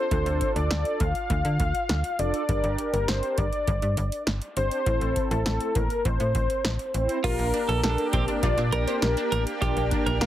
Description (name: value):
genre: synth-pop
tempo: 101 BPM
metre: 4/4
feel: straight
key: unclear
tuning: A4 = 445 Hz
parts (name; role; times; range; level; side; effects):
- wide unison lead; melody; 0.0-10.3 s; A4 to F5; -28 LUFS; left 2 dB; digital delay
- mellow synth brass; accompaniment; 0.0-10.3 s; C4 to C5; -31 LUFS; right 1 dB; chorus
- slap-like FM bass; bass; 0.1-10.3 s; F1 to D3; -27 LUFS; equal; none
- electro analog drum machine; drums; 0.1-10.3 s; crash cymbal, hi-hat, kick drum, snare drum; -29 LUFS; equal; none
- twelve-string electric guitar; second line; 7.2-10.3 s; F4 to Bb4; -30 LUFS; right 4 dB; digital delay
- lush unison pad; sustained chords; 7.2-10.3 s; Bb3 to G4; -33 LUFS; right 1 dB; chorus
- wide unison pluck; arpeggios; 7.2-10.3 s; C4 to G4; -35 LUFS; equal; phaser, digital delay
room: light reverb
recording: heavily compressed radio sound, multiband compression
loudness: -23 LUFS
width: side -12 dB against mid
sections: 0.0-7.2 A section; 7.2-10.3 B section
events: none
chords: 0.0 Dm; 2.5 Gm; 4.9 Am; 7.2 Bb6